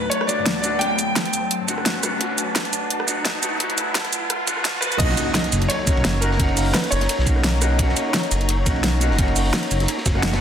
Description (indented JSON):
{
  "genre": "liquid drum and bass",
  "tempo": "172 BPM",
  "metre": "4/4",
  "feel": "swing 54% on 16ths",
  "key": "B major",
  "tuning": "A4 = 440 Hz",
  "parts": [
    { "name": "bright concert grand piano", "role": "melody", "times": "0.0-1.5, 4.8-7.2 s", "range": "A#4 to G5", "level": "-25 LUFS", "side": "equal", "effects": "tape echo" },
    { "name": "vintage hollow-body jazz guitar", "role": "accompaniment", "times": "0.0-10.4 s", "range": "F#3 to A4", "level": "-26 LUFS", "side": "equal", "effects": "tape echo" },
    { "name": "glassy FM pad", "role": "sustained chords", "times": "0.0-10.4 s", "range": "F#3 to A#5", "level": "-30 LUFS", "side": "left 3 dB", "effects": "ensemble chorus, built-in reverb, sidechain pumping" },
    { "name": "smooth synth bass", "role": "bass", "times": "0.0-10.4 s", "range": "D1 to D2", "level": "-22 LUFS", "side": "equal", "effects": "tube saturation" },
    { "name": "riser and impact", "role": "sound effects", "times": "0.0-6.4 s", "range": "none", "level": "-29 LUFS", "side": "equal", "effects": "none" },
    { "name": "pop drum kit", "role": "drums", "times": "0.1-10.3 s", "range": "crash cymbal, hi-hat, rim click, shaker, snare drum", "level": "-23 LUFS", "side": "right 1 dB", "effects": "overdrive" },
    { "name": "electronic kick drum", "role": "drums", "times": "0.3-10.1 s", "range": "none", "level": "-23 LUFS", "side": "equal", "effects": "high-pass filter on kick, high-pass filter on room" },
    { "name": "crunchy breakbeat drum kit", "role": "drums", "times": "5.0-10.4 s", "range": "hi-hat, ride cymbal, snare drum", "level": "-29 LUFS", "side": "equal", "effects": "high-pass filter on cymbals, high-pass filter on hats, high-pass filter on snare, high-pass filter on room" }
  ],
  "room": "moderate digital room reverb, RT60 1.0 s, small room ambience",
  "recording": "dense, heavily limited modern master, high-pass filter",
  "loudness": "-18 LUFS",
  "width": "side -9 dB against mid",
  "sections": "0.0-5.0 A section; 5.0-10.4 B section",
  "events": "build-up 0.0-5.0; riser 0.0-5.0; filter sweep 0.0-5.0; drop 5.0-10.4; impact 5.0-6.4",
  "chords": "0.0 Gmaj9; 5.0 Bmaj9"
}